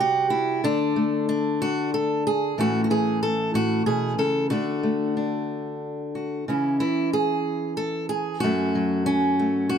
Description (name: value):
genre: folk, solo fingerstyle acoustic guitar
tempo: 62 BPM (dotted quarters)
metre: 6/8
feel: rubato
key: unclear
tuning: A4 = 440 Hz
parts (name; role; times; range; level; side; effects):
- fingerpicked steel-string acoustic guitar; solo; 0.0-9.8 s; F#2 to A4; -22 LUFS; equal; none
room: light reverb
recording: close, detailed microphones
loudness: -22 LUFS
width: side -8 dB against mid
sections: 0.0-9.8 A section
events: none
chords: 0.0 C; 0.6 D5; 2.6 A; 4.5 D; 6.5 C#m; 8.4 F#m